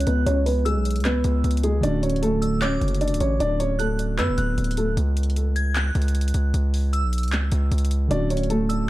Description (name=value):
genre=hip hop, trap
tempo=153 BPM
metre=4/4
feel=half-time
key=C# phrygian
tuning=A4 = 440 Hz
part: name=dark baby grand piano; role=melody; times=0.0-5.0, 8.1-8.9 s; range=G#3 to D5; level=-24 LUFS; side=equal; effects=low-pass filter, digital delay
part: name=glassy synth bell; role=second line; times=0.0-8.9 s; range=D6 to G#6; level=-33 LUFS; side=right 1 dB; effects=chorus, phaser, digital delay
part: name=distorted 808-style bass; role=bass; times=0.0-8.9 s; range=C#1 to F#2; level=-22 LUFS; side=equal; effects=distortion
part: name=trap drum kit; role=drums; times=0.0-8.8 s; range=handclaps, hi-hat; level=-31 LUFS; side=equal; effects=overdrive
part: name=warbly lo-fi synth keys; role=accompaniment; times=1.8-5.0, 8.1-8.9 s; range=D3 to F#4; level=-28 LUFS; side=right 2 dB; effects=chorus, low-pass filter
room=digital ambience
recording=dark, warm production, vinyl crackle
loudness=-20 LUFS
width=side -16 dB against mid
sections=0.0-8.9 A section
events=filter sweep 0.0-1.8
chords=0.0 C#m7; 1.8 Dmaj7; 5.0 C#m; 8.1 Dmaj7